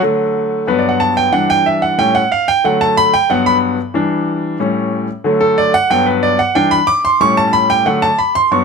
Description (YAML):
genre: latin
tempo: 184 BPM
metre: 4/4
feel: straight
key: D major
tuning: A4 = 441 Hz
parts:
  - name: bright grand piano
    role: solo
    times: 0.0-8.6 s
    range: G2 to D6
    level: -12 LUFS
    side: equal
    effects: none
room: little or no reverb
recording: close, detailed microphones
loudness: -12 LUFS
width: side -5 dB against mid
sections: 0.0-8.6 A section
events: grand piano solo 0.0-8.6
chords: 0.0 D; 0.7 Gmaj7; 1.3 Em7; 2.0 A7; 2.6 D; 3.3 Gmaj7; 3.9 Em7; 4.6 A7; 5.3 D; 5.9 Gmaj7; 6.6 Em7; 7.2 A7; 7.9 D